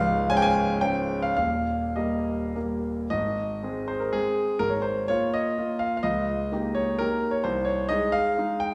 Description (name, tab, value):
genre	classical, romantic triple-time dance for piano with dotted rhythms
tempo	98-141 BPM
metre	3/4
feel	rubato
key	Ab major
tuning	A4 = 440 Hz
part	warm concert grand piano	solo	0.0-8.7 s	Db1 to Ab5	-26 LUFS	equal	none
room	wet recital hall reverb, RT60 1.5 s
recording	heard from further back in the room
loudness	-26 LUFS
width	mono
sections	0.0-3.1 A section; 3.1-8.7 B section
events	none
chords	0.0 Dbmaj7; 1.4 Eb; 3.1 Ab; 4.6 Bb5/Ab; 6.0 Eb7/Db; 7.5 Ab/C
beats	0.30 0.81 | 1.37 1.97 2.55 | 3.11 3.63 4.13 | 4.60 5.09 5.58 | 6.05 6.53 7.02 | 7.46 7.92 8.40